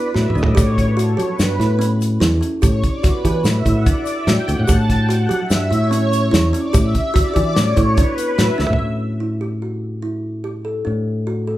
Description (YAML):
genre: progressive instrumental, band music in an uneven meter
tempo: 146 BPM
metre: 5/4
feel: straight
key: A mixolydian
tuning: A4 = 438 Hz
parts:
  - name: analog string pad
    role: accompaniment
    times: 0.0-8.8 s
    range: A4 to A5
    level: -22 LUFS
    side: equal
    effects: ensemble chorus
  - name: kalimba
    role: arpeggios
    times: 0.0-11.6 s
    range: C#4 to A4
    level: -23 LUFS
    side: right 2 dB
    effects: none
  - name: fingered electric bass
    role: bass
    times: 0.2-11.6 s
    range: D2 to F#3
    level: -19 LUFS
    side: equal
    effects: none
  - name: damped 70s drum kit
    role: drums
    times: 0.2-8.8 s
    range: hi-hat, kick drum, snare drum, toms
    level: -18 LUFS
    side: equal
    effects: none
  - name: tube shaker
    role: percussion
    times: 0.4-8.7 s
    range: none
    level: -36 LUFS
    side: left 7 dB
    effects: none
room: light reverb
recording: band playing live in one room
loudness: -15 LUFS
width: side -14 dB against mid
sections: 0.0-8.8 A section; 8.8-11.6 B section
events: analog synth pad solo 0.0-8.8; drum fill 0.2-0.6, 8.6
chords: 0.0 Gsus2/A (rootless); 0.6 A7; 2.6 Gsus2/A; 4.7 A7; 6.7 Gmaj9/A; 8.8 A7; 10.9 Gsus2/A (rootless)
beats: 0.16 | 0.57 0.98 1.40 1.81 2.22 | 2.63 3.04 3.46 3.87 4.28 | 4.69 5.10 5.51 5.92 6.33 | 6.75 7.16 7.57 7.98 8.39 | 8.80 9.22 9.63 10.04 10.46 | 10.87 11.29